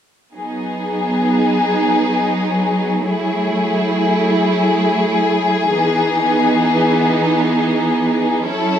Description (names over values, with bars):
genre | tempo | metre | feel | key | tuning
trip hop | free time | none | none | G# phrygian | A4 = 440 Hz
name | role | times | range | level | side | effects
warm studio string section | sustained chords | 0.3-8.8 s | E3 to A4 | -14 LUFS | equal | vintage 12-bit sampler grit
room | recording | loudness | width
moderate spring reverb, RT60 1.8 s, small room ambience | none | -14 LUFS | side -9 dB against mid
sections
0.4-8.8 A section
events
none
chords
0.4 G#m7; 3.1 F#m9; 5.8 Emaj7